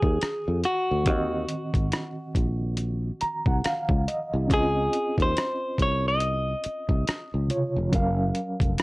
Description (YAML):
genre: R&B, neo-soul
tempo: 70 BPM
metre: 4/4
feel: swing 59% on 16ths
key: Eb dorian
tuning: A4 = 440 Hz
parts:
  - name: clean electric guitar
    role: melody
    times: 0.0-8.8 s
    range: Gb4 to Eb5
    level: -28 LUFS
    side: equal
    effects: slapback echo
  - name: reed electric piano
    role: accompaniment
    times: 0.0-8.8 s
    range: C3 to Bb5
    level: -30 LUFS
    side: right 1 dB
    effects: fast tremolo
  - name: sustaining fretless electric bass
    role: bass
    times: 0.0-8.8 s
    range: F1 to F2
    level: -26 LUFS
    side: equal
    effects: transformer saturation, lush chorus
  - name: boom bap sampler-style drum kit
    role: drums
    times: 0.0-8.8 s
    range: hi-hat, kick drum, rim click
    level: -25 LUFS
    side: equal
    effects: none
room: light reverb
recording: worn, warbling old tape, cassette tape, warbly pitch drift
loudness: -23 LUFS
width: side -22 dB against mid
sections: 0.0-8.8 A section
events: reed electric piano fill 2.8-4.5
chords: 0.0 Ebm69; 4.5 Dbmaj9; 7.9 Gbmaj7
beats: 0.21 | 1.07 1.92 2.78 3.64 | 4.49 5.35 6.21 7.07 | 7.92 8.78